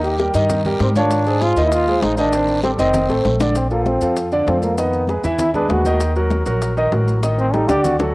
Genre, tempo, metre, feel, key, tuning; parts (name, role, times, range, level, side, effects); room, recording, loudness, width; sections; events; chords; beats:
Afro-Cuban jazz; 196 BPM; 4/4; straight; A4 = 441 Hz
breathy trombone; melody; 0.0-8.1 s; A3 to G4; -20 LUFS; equal; cassette tape
warm grand piano; accompaniment; 0.0-8.1 s; D3 to E5; -19 LUFS; right 1 dB
upright bass; bass; 0.0-8.1 s; F1 to Ab2; -21 LUFS; equal
bongos; percussion; 0.0-8.1 s; -27 LUFS; left 3 dB
congas; percussion; 0.0-8.1 s; -27 LUFS; left 1 dB
maracas; percussion; 0.0-8.1 s; -38 LUFS; left 3 dB
guiro; percussion; 0.2-3.6 s; -35 LUFS; right 2 dB
moderate spring reverb, RT60 1.7 s; home recording on cassette; -15 LUFS; side -22 dB against mid
0.0-3.6 A section; 3.6-8.1 B section
drum fill 2.9-3.6, 7.2-8.1; trombone solo 3.6-8.1
0.0 Eb9; 1.1 Ab6; 2.3 Am7b5; 2.9 F7; 3.6 Bbmaj7; 4.8 Fm7b5; 5.4 Eadd9; 6.0 Ebm; 7.2 Cm69/A
0.19 0.49 0.80 | 1.11 1.41 1.72 2.02 | 2.33 2.64 2.94 3.25 | 3.56 3.86 4.17 4.47 | 4.78 5.09 5.39 5.70 | 6.01 6.31 6.62 6.92 | 7.23 7.54 7.84